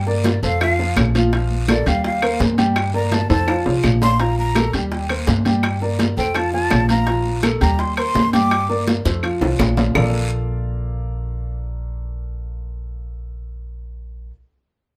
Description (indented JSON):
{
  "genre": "Afro-Cuban jazz",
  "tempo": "167 BPM",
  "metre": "4/4",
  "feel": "straight",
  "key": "Bb major",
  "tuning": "A4 = 440 Hz",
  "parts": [
    { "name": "upright bass", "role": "bass", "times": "0.0-14.3 s", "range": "Bb1 to G2", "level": "-24 LUFS", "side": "equal", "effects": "none" },
    { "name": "dark baby grand piano", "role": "accompaniment", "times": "0.1-14.3 s", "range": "F3 to G5", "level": "-25 LUFS", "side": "equal", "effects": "none" },
    { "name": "bongos", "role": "percussion", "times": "0.1-10.0 s", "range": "none", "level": "-31 LUFS", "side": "equal", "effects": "none" },
    { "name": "congas", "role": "percussion", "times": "0.1-10.0 s", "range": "none", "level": "-24 LUFS", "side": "equal", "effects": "none" },
    { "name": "guiro", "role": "percussion", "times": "0.2-10.0 s", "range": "none", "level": "-34 LUFS", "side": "equal", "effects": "none" },
    { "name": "breathy jazz flute", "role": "melody", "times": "0.3-8.8 s", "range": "D5 to D6", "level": "-24 LUFS", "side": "equal", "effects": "none" },
    { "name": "timbales", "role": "percussion", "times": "0.3-10.0 s", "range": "none", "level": "-28 LUFS", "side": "equal", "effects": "none" },
    { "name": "claves", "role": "percussion", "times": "0.6-10.0 s", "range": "none", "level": "-30 LUFS", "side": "equal", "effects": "none" }
  ],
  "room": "moderate small room reverb, RT60 0.5 s",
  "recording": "band playing live in one room",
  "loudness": "-19 LUFS",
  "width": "mono",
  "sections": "0.0-10.0 A section; 10.0-12.8 B section",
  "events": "flute solo 0.0-10.0; drum fill 3.3-4.2, 9.1-10.0",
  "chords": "0.0 Gm7; 0.6 Bb5; 2.0 Eb69; 2.8 Gm7; 3.5 F5; 4.2 Bb5; 4.9 Eb6; 5.6 Gm7; 6.4 F; 7.1 Bb5; 7.8 Eb6; 8.5 Gm7; 9.2 F5; 10.0 Bbmaj7",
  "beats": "0.25 0.61 0.97 | 1.33 1.69 2.04 2.40 | 2.76 3.12 3.48 3.84 | 4.20 4.56 4.92 5.28 | 5.63 5.99 6.35 6.71 | 7.07 7.43 7.79 8.15 | 8.51 8.87 9.23 9.59 | 9.95 10.31 10.67 11.03 | 11.39 11.75 12.12 12.47"
}